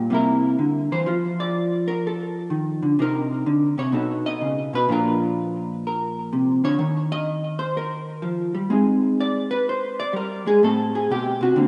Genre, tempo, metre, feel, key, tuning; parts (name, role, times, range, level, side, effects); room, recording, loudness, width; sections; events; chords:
solo jazz; 126 BPM; 4/4; swing 68% on 8ths; A4 = 438 Hz
vintage hollow-body jazz guitar; solo; 0.0-11.7 s; A2 to D#5; -22 LUFS; equal; analog chorus, delay
wet lush hall reverb, RT60 2.0 s; dreamy mix soaked in reverb, nothing above 10.8 kHz; -23 LUFS; mono
0.0-11.7 A section
hollow-body jazz guitar solo 0.0-11.7
0.1 C7; 1.1 F6; 3.0 Cm9; 3.9 B9; 4.9 Bb; 6.8 Eb5; 8.7 Abmaj7; 10.6 Am13